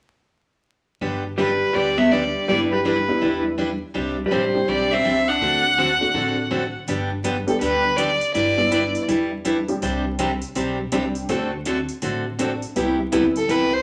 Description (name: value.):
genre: country, western swing.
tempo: 164 BPM.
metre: 4/4.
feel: swing 63% on 8ths.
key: G major.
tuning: A4 = 441 Hz.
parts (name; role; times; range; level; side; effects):
picked steel-string acoustic guitar; accompaniment; 1.0-13.7 s; C3 to B4; -26 LUFS; equal; none.
upright bass; bass; 1.0-13.8 s; G1 to E2; -36 LUFS; equal; none.
warm fiddle; melody; 1.4-9.0, 13.4-13.8 s; A4 to F#5; -23 LUFS; equal; none.
vintage hollow-body jazz guitar; second line; 1.4-6.8 s; G3 to D4; -26 LUFS; equal; none.
honky-tonk upright piano; accompaniment; 2.1-13.3 s; G3 to A4; -29 LUFS; equal; none.
electronic hi-hat; drums; 6.9-13.6 s; none; -39 LUFS; equal; overdrive.
room: wet large studio reverb, RT60 0.8 s.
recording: vinyl crackle.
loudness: -21 LUFS.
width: mono.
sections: 1.0-6.9 A section; 6.9-13.8 B section.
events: none.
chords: 1.0 G; 2.5 Em7/G; 3.9 Csus2; 5.4 D7; 6.9 G; 8.3 Em7/G; 9.8 Csus2; 11.3 D7; 12.8 Cmaj7.